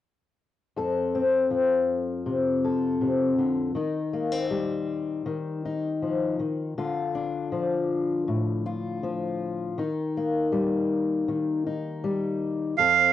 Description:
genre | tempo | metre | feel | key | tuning
folk | 80 BPM | 4/4 | straight | F mixolydian | A4 = 440 Hz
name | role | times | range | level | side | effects
fingerpicked steel-string acoustic guitar | accompaniment | 0.8-13.1 s | F2 to A4 | -24 LUFS | left 3 dB | cassette tape
melodica | melody | 12.8-13.1 s | F5 | -16 LUFS | right 9 dB | cassette tape
room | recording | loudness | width
wet studio reverb, RT60 0.6 s | home recording on cassette | -24 LUFS | side -12 dB against mid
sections
0.8-12.8 A section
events
none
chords
0.8 F; 3.8 Cm/Eb; 6.8 Dm; 9.8 Eb

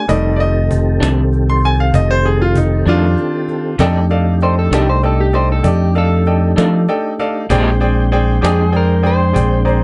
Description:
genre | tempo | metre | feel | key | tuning
slow blues | 65 BPM (dotted quarters) | 12/8 | straight | F mixolydian | A4 = 440 Hz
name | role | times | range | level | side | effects
bright grand piano | accompaniment | 0.0-9.8 s | Eb3 to C6 | -21 LUFS | equal | none
tonewheel organ | sustained chords | 0.0-9.8 s | Eb3 to G5 | -24 LUFS | equal | chorus vibrato, slow rotary speaker
fingered electric bass | bass | 0.1-9.8 s | F1 to F3 | -16 LUFS | equal | none
cajon | drums | 0.1-9.8 s | none | -24 LUFS | equal | none
electric guitar through a small old amp | accompaniment | 1.0-8.6 s | F2 to G4 | -22 LUFS | equal | tremolo
electric guitar through a small old amp | second line | 4.4-9.8 s | G4 to C5 | -22 LUFS | equal | none
room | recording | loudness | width
little or no reverb | dark, warm production, nothing above 10.6 kHz | -14 LUFS | mono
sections
0.0-3.8 A section; 3.8-9.8 A section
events
grand piano solo 0.0-3.8; break 2.9-3.8; clean electric guitar solo 3.8-9.8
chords
0.0 F13; 7.5 Bb13

